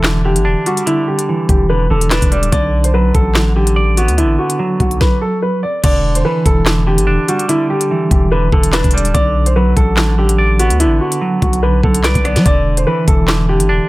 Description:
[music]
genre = hip hop, drill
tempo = 145 BPM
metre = 4/4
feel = half-time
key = E minor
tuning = A4 = 440 Hz
[part]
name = warm upright piano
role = melody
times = 0.0-13.9 s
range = E4 to D5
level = -18 LUFS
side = equal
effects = low-pass filter
[part]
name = semi-hollow electric guitar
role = accompaniment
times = 0.0-13.9 s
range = D3 to D5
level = -18 LUFS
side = right 2 dB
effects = harmonic tremolo, low-pass filter
[part]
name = long sustained 808-style bass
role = bass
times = 0.0-13.8 s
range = D1 to F#3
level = -15 LUFS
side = equal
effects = none
[part]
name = drill drum kit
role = drums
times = 0.0-13.7 s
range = crash cymbal, handclaps, hi-hat, kick drum, rim click, snare drum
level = -15 LUFS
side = equal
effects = none
[sound]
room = digital ambience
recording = none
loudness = -11 LUFS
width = side -19 dB against mid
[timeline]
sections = 0.0-5.8 A section; 5.8-13.9 B section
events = none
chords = 0.0 Em7; 2.5 Bm; 5.8 Em7; 9.1 Bm; 12.5 Em7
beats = 0.04 0.46 | 0.87 1.28 1.70 2.11 | 2.52 2.94 3.35 3.77 | 4.18 4.59 5.01 5.42 | 5.84 6.25 6.66 7.08 | 7.49 7.91 8.32 8.73 | 9.15 9.56 9.97 10.39 | 10.80 11.21 11.63 12.04 | 12.46 12.87 13.28 13.70

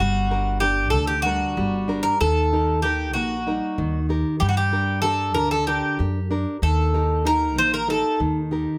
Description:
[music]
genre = greek folk, Greek bouzouki band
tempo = 190 BPM (eighths)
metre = 7/8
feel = straight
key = unclear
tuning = A4 = 439 Hz
[part]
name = Greek bouzouki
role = melody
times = 0.0-8.2 s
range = F#4 to C5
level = -24 LUFS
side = equal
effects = none
[part]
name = nylon-string guitar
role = accompaniment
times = 0.0-8.8 s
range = D3 to Bb4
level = -28 LUFS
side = equal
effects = none
[part]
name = upright bass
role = bass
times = 0.0-8.6 s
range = G1 to G2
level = -27 LUFS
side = equal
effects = none
[sound]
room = light reverb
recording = none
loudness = -22 LUFS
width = mono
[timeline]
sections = 0.0-8.8 A section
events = none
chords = 0.0 Gm; 2.2 Eb; 4.4 Gm; 6.6 Eb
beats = | 0.00 0.32 0.63 0.95 1.26 1.58 1.89 | 2.21 2.53 2.84 3.16 3.47 3.79 4.11 | 4.42 4.74 5.05 5.37 5.68 6.00 6.32 | 6.63 6.95 7.26 7.58 7.89 8.21 8.53

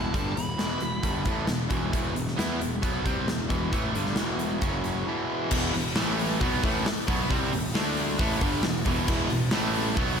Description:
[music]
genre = hard rock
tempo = 134 BPM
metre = 4/4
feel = straight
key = E minor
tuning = A4 = 440 Hz
[part]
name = high-gain lead guitar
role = melody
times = 0.0-1.2 s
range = A5 to B5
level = -36 LUFS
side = equal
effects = distortion, slapback echo, tape echo
[part]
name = cranked stack guitar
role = riff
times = 0.0-10.2 s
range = E2 to E4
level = -32 LUFS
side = left 9 dB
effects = overdrive
[part]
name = cranked stack guitar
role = riff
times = 0.0-10.2 s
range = E2 to E4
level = -30 LUFS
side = right 9 dB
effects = overdrive, slapback echo
[part]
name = fuzz picked electric bass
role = bass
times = 0.0-10.2 s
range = E1 to E2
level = -33 LUFS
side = equal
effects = overdrive
[part]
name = huge arena drum kit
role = drums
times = 0.1-10.1 s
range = crash cymbal, hi-hat, kick drum, snare drum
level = -28 LUFS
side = equal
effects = none
[part]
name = high-gain distorted guitar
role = riff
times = 5.5-10.2 s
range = E2 to D4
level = -34 LUFS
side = equal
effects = distortion
[sound]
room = moderate lush hall reverb, RT60 1.6 s, studio ambience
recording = big arena sound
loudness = -24 LUFS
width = side -7 dB against mid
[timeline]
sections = 0.0-5.5 A section; 5.5-10.2 B section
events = none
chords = 0.0 Em; 4.6 F#5; 5.1 E5; 6.0 A5; 6.4 Em; 7.7 D5; 8.2 Em; 9.5 A5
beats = | 0.13 0.58 1.03 1.48 | 1.93 2.38 2.83 3.27 | 3.72 4.17 4.62 5.06 | 5.51 5.96 6.41 6.85 | 7.30 7.74 8.19 8.63 | 9.08 9.52 9.97

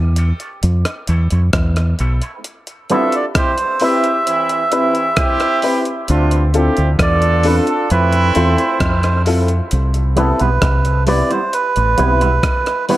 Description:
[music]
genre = dub reggae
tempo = 66 BPM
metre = 4/4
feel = straight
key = unclear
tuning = A4 = 443 Hz
[part]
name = deep dub fingered electric bass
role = bass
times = 0.0-12.4 s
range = A1 to F2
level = -15 LUFS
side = equal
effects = none
[part]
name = electric guitar with an envelope filter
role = accompaniment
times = 0.2-3.0, 10.2-13.0 s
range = G3 to F4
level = -24 LUFS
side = right 4 dB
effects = high-pass filter, dub echo
[part]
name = dark upright piano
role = stabs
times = 0.2-13.0 s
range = C4 to B4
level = -21 LUFS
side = left 2 dB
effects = high-pass filter, dub echo
[part]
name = breakbeat sampler-style drum kit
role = drums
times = 0.2-13.0 s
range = hi-hat, kick drum, rim click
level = -20 LUFS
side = equal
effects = none
[part]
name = melodica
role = melody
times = 2.9-12.9 s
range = A4 to E5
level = -19 LUFS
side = right 2 dB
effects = dub echo
[part]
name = warm horn section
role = second line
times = 2.9-9.2 s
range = E3 to A4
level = -20 LUFS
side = right 2 dB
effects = high-pass filter, dub echo
[sound]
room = moderate spring reverb, RT60 2.9 s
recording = none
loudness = -13 LUFS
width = side -15 dB against mid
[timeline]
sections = 0.0-13.0 A section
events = none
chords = 0.0 Dm7; 0.6 Fmaj7; 2.4 Cmaj7; 6.1 Dm7; 7.9 Fmaj7; 9.7 Cmaj7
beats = 0.63 1.54 | 2.45 3.35 4.26 5.17 | 6.08 6.99 7.90 8.80 | 9.71 10.62 11.53 12.44

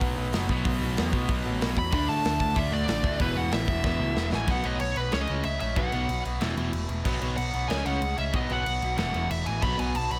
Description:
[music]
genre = punk rock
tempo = 187 BPM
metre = 4/4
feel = straight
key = unclear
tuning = A4 = 440 Hz
[part]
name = crunchy overdriven guitar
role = riff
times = 0.0-9.9 s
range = E2 to D4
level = -36 LUFS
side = equal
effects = none
[part]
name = overdriven electric guitar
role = riff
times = 0.0-9.9 s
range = E2 to D4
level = -37 LUFS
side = equal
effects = none
[part]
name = raw garage guitar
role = riff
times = 0.0-10.2 s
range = E2 to D4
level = -38 LUFS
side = equal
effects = overdrive
[part]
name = overdriven picked electric bass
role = bass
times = 0.0-10.2 s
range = E1 to D3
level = -33 LUFS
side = equal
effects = none
[part]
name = big rock drum kit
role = drums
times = 0.0-10.2 s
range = crash cymbal, hi-hat, kick drum, snare drum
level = -33 LUFS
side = equal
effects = none
[part]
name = nasal lead guitar with a parked wah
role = melody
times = 1.8-10.2 s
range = B4 to B5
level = -32 LUFS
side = equal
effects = overdrive
[sound]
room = light reverb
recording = none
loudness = -27 LUFS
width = mono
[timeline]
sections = 0.0-4.5 A section; 4.5-10.2 B section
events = drum fill 3.8-4.5; half time 4.5-10.2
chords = 0.0 B5; 1.9 D5; 3.2 E5; 4.5 B5; 5.1 C#5; 5.8 B5; 6.4 E5; 7.0 B5; 7.7 C#5; 8.3 B5; 9.0 E5; 9.6 B5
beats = 0.02 0.33 | 0.65 0.97 1.29 1.61 | 1.93 2.24 2.56 2.88 | 3.20 3.52 3.84 4.16 | 4.48 4.80 5.12 5.44 | 5.76 6.08 6.41 6.73 | 7.05 7.37 7.69 8.01 | 8.33 8.66 8.98 9.30 | 9.62 9.94

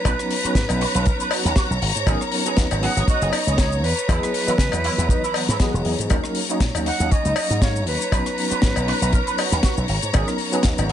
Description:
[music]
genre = nu-disco, nu disco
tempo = 119 BPM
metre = 4/4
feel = swing 55% on 16ths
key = G# minor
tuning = A4 = 440 Hz
[part]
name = silver concert flute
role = melody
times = 0.0-10.9 s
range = B4 to F#5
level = -27 LUFS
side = right 1 dB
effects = dub echo
[part]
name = mellow tine electric piano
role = accompaniment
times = 0.0-10.9 s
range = E3 to A#5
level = -27 LUFS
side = equal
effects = medium tremolo
[part]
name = warm symphonic string section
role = sustained chords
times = 0.0-10.9 s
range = C#5 to A#5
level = -28 LUFS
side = equal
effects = sidechain pumping
[part]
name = electric guitar with an envelope filter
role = riff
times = 0.1-10.9 s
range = A#3 to B4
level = -29 LUFS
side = right 3 dB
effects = ensemble chorus
[part]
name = slap bass with an envelope filter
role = bass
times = 0.1-10.9 s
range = E1 to C#3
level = -23 LUFS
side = equal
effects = none
[part]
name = kick drum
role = drums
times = 0.1-10.8 s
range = none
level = -20 LUFS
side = equal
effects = small room ambience
[part]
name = tight funk drum kit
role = drums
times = 0.1-10.9 s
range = cabasa, hi-hat, rim click, snare drum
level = -26 LUFS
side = left 3 dB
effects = small room ambience
[part]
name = cowbell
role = percussion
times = 0.1-10.9 s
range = none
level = -28 LUFS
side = left 4 dB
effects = none
[sound]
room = small room ambience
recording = nothing above 10.5 kHz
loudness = -18 LUFS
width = side -10 dB against mid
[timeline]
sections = 0.0-10.9 A section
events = none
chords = 0.1 Bmaj7; 1.8 G#m11; 3.8 Emaj7; 6.1 D#m7; 8.1 Bmaj7; 9.9 G#m11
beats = | 0.05 0.56 1.06 1.56 | 2.07 2.57 3.08 3.58 | 4.09 4.59 5.09 5.60 | 6.10 6.61 7.11 7.62 | 8.12 8.62 9.13 9.63 | 10.14 10.64

